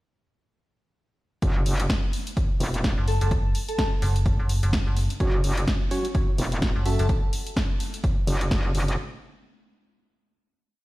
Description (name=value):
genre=bass house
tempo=127 BPM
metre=4/4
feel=swing 58% on 16ths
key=F# minor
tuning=A4 = 440 Hz
part: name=metallic wobble bass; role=bass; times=1.4-9.0 s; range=E1 to F#1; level=-24 LUFS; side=equal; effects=chorus, tube saturation, sidechain pumping
part: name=electronic kick drum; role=drums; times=1.4-8.6 s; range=none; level=-25 LUFS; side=equal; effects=studio ambience
part: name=house drum kit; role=drums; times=1.4-9.0 s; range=hi-hat, snare drum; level=-32 LUFS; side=equal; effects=studio ambience
part: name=metallic FM bass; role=bass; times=3.0-7.1 s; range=F#1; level=-23 LUFS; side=equal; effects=overdrive, sidechain pumping
part: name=airy dreamy lead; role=melody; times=3.1-3.9, 6.9-7.1 s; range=A4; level=-33 LUFS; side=left 2 dB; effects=chorus, tape echo
part: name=percussive organ stab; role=stabs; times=5.2-7.1 s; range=F#3 to E5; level=-32 LUFS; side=right 2 dB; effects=chorus, sidechain pumping, tape echo
room=little or no reverb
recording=played on a big sound system in a bare room, stone room reverb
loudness=-22 LUFS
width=side -18 dB against mid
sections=1.4-9.0 drop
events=drop 1.4-9.0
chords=1.4 F#5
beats=| 1.42 1.90 2.37 2.84 | 3.31 3.79 4.26 4.73 | 5.20 5.68 6.15 6.62 | 7.09 7.57 8.04 8.51